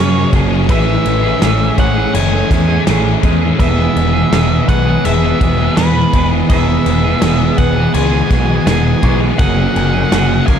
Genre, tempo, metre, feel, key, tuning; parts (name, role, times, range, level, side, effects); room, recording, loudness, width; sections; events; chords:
rock, shoegaze and dream pop; 83 BPM; 4/4; straight; E major; A4 = 440 Hz
octave-fuzz lead guitar; melody; 0.0-10.6 s; B4 to G#5; -21 LUFS; right 2 dB; distortion, tape echo
string machine, violas; sustained chords; 0.0-10.6 s; E3 to C#5; -25 LUFS; equal; phaser, ensemble chorus
fingerpicked plugged-in twelve-string acoustic guitar; arpeggios; 0.0-10.6 s; A3 to C#5; -24 LUFS; left 8 dB; wide subtle chorus, tape echo
clean electric guitar; riff; 0.0-10.6 s; E2 to G#4; -17 LUFS; right 9 dB; reverse reverb
thick fuzz guitar; riff; 0.0-10.6 s; E2 to A3; -18 LUFS; left 10 dB; distortion, ensemble chorus
growling picked electric bass; bass; 0.0-10.6 s; E1 to F#2; -16 LUFS; equal; overdrive
loose indie drum kit; drums; 0.3-10.6 s; crash cymbal, kick drum, snare drum; -18 LUFS; equal
light reverb, studio ambience; -10 LUFS; side -8 dB against mid
0.0-10.6 A section
0.0 F#add9; 0.7 Amaj7; 3.6 E; 9.4 F#add9